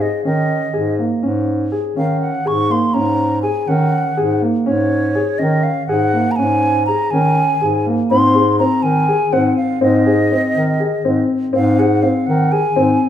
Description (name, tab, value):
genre	contemporary instrumental, chamber music in an uneven meter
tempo	244 BPM (eighths)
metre	7/8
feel	straight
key	Ab mixolydian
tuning	A4 = 440 Hz
part	wooden flute	melody	0.0-13.1 s	Db5 to Db6	-19 LUFS	right 1 dB	none
part	dark grand piano	arpeggios	0.0-13.1 s	Bb3 to Ab4	-18 LUFS	left 2 dB	none
part	warm bass clarinet	bass	0.0-13.0 s	Ab2 to Eb3	-18 LUFS	equal	none
room	moderate recital hall reverb, RT60 1.7 s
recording	minimal, uncompressed stereo recording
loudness	-14 LUFS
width	side -10 dB against mid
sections	0.0-8.1 A section; 8.1-13.1 B section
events	none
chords	0.0 Absus4; 8.1 Ab